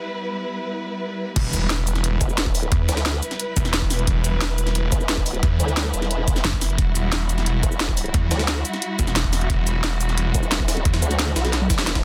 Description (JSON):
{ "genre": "dark technical drum and bass", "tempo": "177 BPM", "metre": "4/4", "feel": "straight", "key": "E minor", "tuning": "A4 = 437 Hz", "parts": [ { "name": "dark symphonic string section", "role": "sustained chords", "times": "0.0-12.0 s", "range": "G3 to B4", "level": "-31 LUFS", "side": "equal", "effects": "sidechain pumping" }, { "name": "warbly tape-like pad", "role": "texture", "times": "0.0-1.4 s", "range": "B3 to F#5", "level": "-41 LUFS", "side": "equal", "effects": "chorus, built-in reverb, sidechain pumping" }, { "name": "snarling distorted saw bass", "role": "bass", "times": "1.4-11.0 s", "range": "E1 to E2", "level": "-24 LUFS", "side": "equal", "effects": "distortion, sidechain pumping" }, { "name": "drum and bass drum kit", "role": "drums", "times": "1.4-12.0 s", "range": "cabasa, crash cymbal, hi-hat, snare drum, toms", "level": "-27 LUFS", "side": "equal", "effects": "overdrive" }, { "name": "electronic kick drum", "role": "drums", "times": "1.4-12.0 s", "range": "none", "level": "-24 LUFS", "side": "equal", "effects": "overdrive" }, { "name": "jungle sampler-style drum kit", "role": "drums", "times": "1.4-12.0 s", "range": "hi-hat, snare drum", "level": "-34 LUFS", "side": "equal", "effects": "none" }, { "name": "impact", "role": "sound effects", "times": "1.4-2.7 s", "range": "none", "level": "-35 LUFS", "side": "equal", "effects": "none" }, { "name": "formant-sweep wobble bass", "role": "bass", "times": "2.2-12.0 s", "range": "E1 to D2", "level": "-26 LUFS", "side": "equal", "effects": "chorus" } ], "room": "digital ambience", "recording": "dense, heavily limited modern master", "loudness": "-22 LUFS", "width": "mono", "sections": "0.0-1.4 A section; 1.4-12.0 B section", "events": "drop 1.4-12.0; impact 1.4-2.7; drum fill 11.5-12.0", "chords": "0.0 Em" }